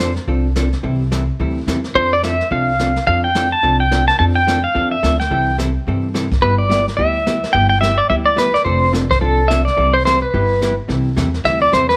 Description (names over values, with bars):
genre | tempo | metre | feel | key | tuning
country, western swing | 215 BPM | 4/4 | swing 60% on 8ths | C major | A4 = 438 Hz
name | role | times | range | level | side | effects
pedal steel guitar | melody | 0.0-12.0 s | A4 to A5 | -18 LUFS | equal | none
vintage hollow-body jazz guitar | accompaniment | 0.0-11.8 s | C3 to A4 | -24 LUFS | equal | none
upright bass | bass | 0.0-12.0 s | F1 to G2 | -22 LUFS | equal | none
jazz brush drum kit | drums | 0.0-12.0 s | brushed snare drum, hi-hat, kick drum, snare drum | -27 LUFS | equal | none
room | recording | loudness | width
light reverb, small room ambience | none | -16 LUFS | mono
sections
0.0-10.9 A section; 10.9-12.0 B section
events
pedal steel guitar solo 10.9-12.0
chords
0.0 F6; 0.8 C6; 2.0 F6; 5.3 C6; 6.4 G6; 8.7 F6; 9.8 C6; 10.3 G6; 10.9 C6